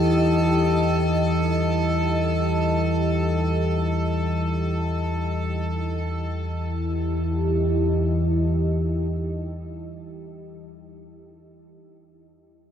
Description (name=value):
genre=ambient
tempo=free time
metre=none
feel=none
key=E harmonic minor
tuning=A4 = 441 Hz
part: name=deep dark ambient pad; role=sustained chords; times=0.0-10.9 s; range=E4 to D#5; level=-26 LUFS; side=right 1 dB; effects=chorus, built-in reverb
part: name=deep rumbling drone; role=drone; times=0.0-10.6 s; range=E2 to E3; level=-24 LUFS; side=left 1 dB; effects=built-in reverb
part: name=metallic inharmonic drone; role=texture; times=0.0-5.9 s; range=A4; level=-29 LUFS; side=right 1 dB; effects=chorus, built-in reverb
room=wet huge ambient reverb, RT60 7.8 s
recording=none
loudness=-21 LUFS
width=side -9 dB against mid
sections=0.0-5.9 A section; 5.9-10.8 B section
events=filter sweep on synth drone 0.0-5.9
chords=0.0 Em